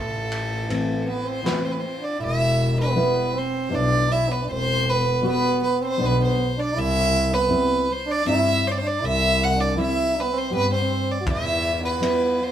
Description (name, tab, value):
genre	klezmer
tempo	80 BPM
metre	3/4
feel	straight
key	E minor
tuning	A4 = 443 Hz
part	rich violin	melody	0.0-12.5 s	A4 to F#5	-24 LUFS	right 1 dB	none
part	clear trombone	second line	0.0-12.5 s	A3 to F#4	-27 LUFS	right 3 dB	none
part	muted double bass	bass	0.0-12.2 s	E1 to G2	-25 LUFS	left 1 dB	none
part	vintage drum kit	drums	0.3-1.6, 11.3-12.2 s	kick drum, ride cymbal, snare drum	-33 LUFS	equal	none
part	nylon-string guitar	accompaniment	0.7-12.4 s	E3 to G4	-26 LUFS	left 2 dB	none
room	wet stone room reverb, RT60 1.0 s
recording	band playing live in one room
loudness	-20 LUFS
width	side -10 dB against mid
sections	0.0-2.2 A section; 2.2-12.5 B section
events	none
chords	0.0 Am; 2.2 Em; 6.7 C; 11.3 Em